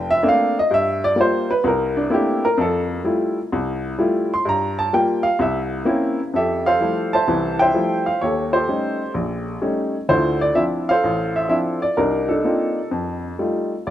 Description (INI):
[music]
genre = solo jazz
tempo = 128 BPM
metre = 4/4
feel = swing 67% on 8ths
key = F major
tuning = A4 = 440 Hz
[part]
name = warm upright piano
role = solo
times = 0.0-13.9 s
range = F1 to C6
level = -18 LUFS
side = equal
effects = none
[sound]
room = moderate plate reverb, RT60 3.2 s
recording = rough home demo mix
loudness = -18 LUFS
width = side -12 dB against mid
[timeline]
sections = 0.0-6.3 A section; 6.3-13.9 B section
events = upright piano solo 0.0-6.3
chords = 0.0 Bbmaj9; 0.7 Gm7; 1.6 C13; 2.6 Fmaj9; 4.5 Gm7; 5.4 C7b9; 6.3 Fmaj9; 8.2 Eb7#11; 10.1 Dm9; 12.0 Cm11; 12.9 F9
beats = 0.23 | 0.70 1.17 1.64 2.11 | 2.58 3.04 3.51 3.98 | 4.45 4.92 5.39 5.86 | 6.33 6.80 7.27 7.74 | 8.21 8.68 9.15 9.62 | 10.09 10.56 11.03 11.50 | 11.97 12.44 12.91 13.38 | 13.85